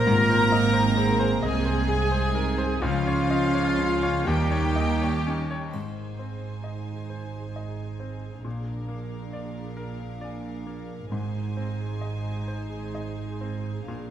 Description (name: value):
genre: cinematic, emotional film score for orchestra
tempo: 41-45 BPM (dotted quarters)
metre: 6/8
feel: rubato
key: Ab lydian from 5.7 s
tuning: A4 = 443 Hz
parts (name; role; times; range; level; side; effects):
- rich studio violin section; melody; 0.0-5.7 s; F5 to Bb5; -32 LUFS; left 2 dB; none
- bright concert flute; second line; 0.0-5.7 s; F5 to Bb5; -33 LUFS; left 2 dB; none
- clear clarinet; second line; 0.0-5.7 s; F4 to Bb4; -33 LUFS; left 1 dB; none
- clear studio violin section; second line; 0.0-14.1 s; F4 to Ab5; -37 LUFS; left 2 dB; none
- mellow cor anglais; second line; 0.0-5.7 s; F4 to Bb4; -32 LUFS; right 1 dB; none
- bright grand piano; accompaniment; 0.0-14.1 s; Db2 to F5; -34 LUFS; left 2 dB; none
- dark studio viola section; accompaniment; 0.0-14.1 s; Ab3 to Ab4; -33 LUFS; right 2 dB; none
- dark French horn section; sustained chords; 0.0-5.7 s; F3 to Bb3; -30 LUFS; left 1 dB; none
- concert harp; arpeggios; 0.0-14.1 s; Ab2 to Eb6; -37 LUFS; left 8 dB; none
- dark studio double bass section; bass; 0.0-14.1 s; Ab1 to Eb2; -31 LUFS; right 3 dB; none
- rich studio cello section; bass; 0.0-14.1 s; Ab2 to Eb3; -31 LUFS; right 3 dB; none
- triangle; percussion; 5.7-7.5 s; none; -64 LUFS; left 3 dB; none
room: wet scoring stage reverb, RT60 2.1 s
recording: none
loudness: -24 LUFS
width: side -10 dB against mid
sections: 0.0-5.7 A section; 5.7-14.1 B section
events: none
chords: 0.1 Ab; 2.8 Dbadd9; 4.3 Eb7; 5.7 Ab; 8.5 Bb7; 11.1 Ab